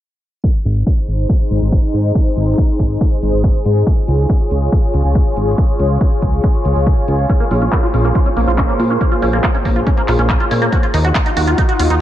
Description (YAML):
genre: uplifting trance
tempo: 140 BPM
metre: 4/4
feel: straight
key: unclear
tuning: A4 = 440 Hz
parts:
  - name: lush unison pad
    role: sustained chords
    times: 0.8-12.0 s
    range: Bb3 to Db5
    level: -19 LUFS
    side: left 1 dB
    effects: chorus, phaser, sidechain pumping
  - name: big-room dance drum kit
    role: drums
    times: 0.4-12.0 s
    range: handclaps, hi-hat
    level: -24 LUFS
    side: equal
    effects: sidechain pumping on hats
  - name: electronic kick drum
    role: drums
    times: 0.4-11.7 s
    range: none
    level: -15 LUFS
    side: equal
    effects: none
  - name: fat analog bass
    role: bass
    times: 0.7-12.0 s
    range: Ab1 to Bb2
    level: -15 LUFS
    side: equal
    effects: sidechain pumping
  - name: liquid acid bass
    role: arpeggios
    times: 7.3-11.9 s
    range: Bb3 to Gb4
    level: -20 LUFS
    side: right 1 dB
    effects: phaser, ensemble chorus, cassette tape, sidechain pumping, diffuse ambient delay
room: light reverb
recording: low-pass filter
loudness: -12 LUFS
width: side -12 dB against mid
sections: 0.4-12.0 A section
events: filter sweep on analog synth bass 0.4-12.0; filter sweep on analog synth pad 0.4-12.0; filter sweep 0.4-12.0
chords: 0.4 Ab; 3.9 Db; 7.3 Bbm7; 10.7 Ebmadd9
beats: | 0.44 0.87 1.29 1.72 | 2.15 2.58 3.01 3.44 | 3.87 4.29 4.72 5.15 | 5.58 6.01 6.44 6.87 | 7.29 7.72 8.15 8.58 | 9.01 9.44 9.87 10.29 | 10.72 11.15 11.58 12.01